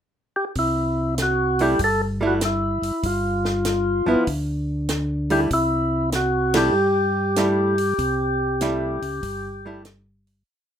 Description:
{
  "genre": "soul jazz organ trio",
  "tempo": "97 BPM",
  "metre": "4/4",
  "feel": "swing 67% on 8ths",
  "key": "C major",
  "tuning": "A4 = 440 Hz",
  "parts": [
    { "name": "percussive tonewheel organ", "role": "melody", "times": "0.4-9.8 s", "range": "E4 to A4", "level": "-22 LUFS", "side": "equal", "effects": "slow rotary speaker" },
    { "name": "tonewheel organ", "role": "bass", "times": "0.6-10.4 s", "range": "G1 to G2", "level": "-25 LUFS", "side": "equal", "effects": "slow rotary speaker" },
    { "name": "compact cocktail drum kit", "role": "drums", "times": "0.6-10.4 s", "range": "hi-hat, kick drum, ride cymbal, snare drum", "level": "-29 LUFS", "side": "equal", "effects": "none" },
    { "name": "archtop guitar, miked and amplified", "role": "accompaniment", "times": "1.6-9.8 s", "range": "F3 to E4", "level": "-22 LUFS", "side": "right 2 dB", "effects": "none" }
  ],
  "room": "moderate small room reverb, RT60 0.5 s",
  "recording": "rough home demo mix",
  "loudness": "-19 LUFS",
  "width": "side -9 dB against mid",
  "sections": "0.0-0.5 pickup bar; 0.5-10.5 A section",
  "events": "band accent 6.4-6.7; fade-out 8.0-10.5",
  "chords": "0.0 N.C.; 0.5 C6; 3.0 G7(no3); 5.5 C6",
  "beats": "| 0.54 1.17 1.79 2.41 | 3.03 3.65 4.27 4.89 | 5.50 6.12 6.75 7.37 | 7.99 8.61 9.23 9.85"
}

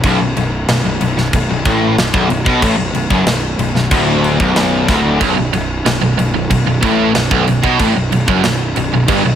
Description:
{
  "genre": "heavy metal",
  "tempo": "93 BPM",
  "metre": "4/4",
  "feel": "straight",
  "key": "B minor",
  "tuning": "A4 = 441 Hz",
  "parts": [
    { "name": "distorted electric guitar", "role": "riff", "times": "0.0-9.4 s", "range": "B1 to B2", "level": "-17 LUFS", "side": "left 5 dB", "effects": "distortion" },
    { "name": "distorted electric guitar", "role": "riff", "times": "0.0-9.4 s", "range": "B1 to B2", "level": "-19 LUFS", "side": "right 3 dB", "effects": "overdrive" },
    { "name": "fuzz picked electric bass", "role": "bass", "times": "0.0-9.4 s", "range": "B0 to B1", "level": "-19 LUFS", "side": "right 1 dB", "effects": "overdrive" },
    { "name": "tight metal drum kit", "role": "drums", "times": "0.0-9.2 s", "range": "crash cymbal, kick drum, snare drum", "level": "-18 LUFS", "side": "equal", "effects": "none" },
    { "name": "tight distorted guitar", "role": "riff", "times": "5.2-9.4 s", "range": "B1 to B2", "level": "-17 LUFS", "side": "right 10 dB", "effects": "distortion" }
  ],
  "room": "studio reverb",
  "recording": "none",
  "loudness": "-12 LUFS",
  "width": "side -9 dB against mid",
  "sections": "0.0-9.4 A section",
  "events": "none",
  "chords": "0.0 Bm",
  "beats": "| 0.04 0.68 1.33 1.98 | 2.62 3.27 3.92 4.56 | 5.21 5.86 6.50 7.15 | 7.79 8.44 9.09"
}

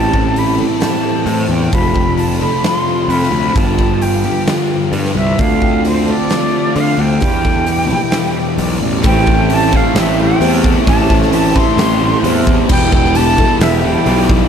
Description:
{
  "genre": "rock, shoegaze and dream pop",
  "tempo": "131 BPM",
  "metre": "4/4",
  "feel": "straight",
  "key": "A minor",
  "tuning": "A4 = 440 Hz",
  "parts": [
    { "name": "jazz flute", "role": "melody", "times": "0.0-14.3 s", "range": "C5 to C6", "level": "-19 LUFS", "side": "equal", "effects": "analog delay" },
    { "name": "picked twelve-string acoustic guitar", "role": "arpeggios", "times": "0.0-14.5 s", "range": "F4 to D5", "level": "-25 LUFS", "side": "left 7 dB", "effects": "ensemble chorus, analog delay" },
    { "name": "electric guitar through a small old amp", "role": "riff", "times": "0.0-14.5 s", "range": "G2 to C5", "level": "-19 LUFS", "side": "right 8 dB", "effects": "reverse reverb" },
    { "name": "thick fuzz guitar", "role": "riff", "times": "0.0-14.5 s", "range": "E2 to D4", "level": "-19 LUFS", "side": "left 8 dB", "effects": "distortion, ensemble chorus" },
    { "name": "fuzz picked electric bass", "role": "bass", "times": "0.0-14.4 s", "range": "E1 to D3", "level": "-17 LUFS", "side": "equal", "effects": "overdrive" },
    { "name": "huge arena drum kit", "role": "drums", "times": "0.1-14.4 s", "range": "crash cymbal, hi-hat, kick drum, snare drum", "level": "-17 LUFS", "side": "equal", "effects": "none" },
    { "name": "raw garage guitar", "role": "riff", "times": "9.0-14.5 s", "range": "E2 to A3", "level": "-21 LUFS", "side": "equal", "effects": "overdrive, wide subtle chorus" }
  ],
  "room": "moderate plate reverb, RT60 1.2 s, small room ambience",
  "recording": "dreamy mix soaked in reverb",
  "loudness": "-11 LUFS",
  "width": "side -8 dB against mid",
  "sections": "0.0-9.0 A section; 9.0-14.5 B section",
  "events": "none",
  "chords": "0.0 Am7; 1.7 F6; 3.6 G7; 5.4 Dm7; 7.2 Em7; 9.0 Am7; 12.7 Em7",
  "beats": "0.36 0.82 1.27 | 1.73 2.19 2.64 3.10 | 3.56 4.02 4.47 4.93 | 5.39 5.85 6.31 6.76 | 7.22 7.68 8.13 8.59 | 9.05 9.51 9.96 10.42 | 10.87 11.33 11.78 12.24 | 12.69 13.15 13.61 14.06"
}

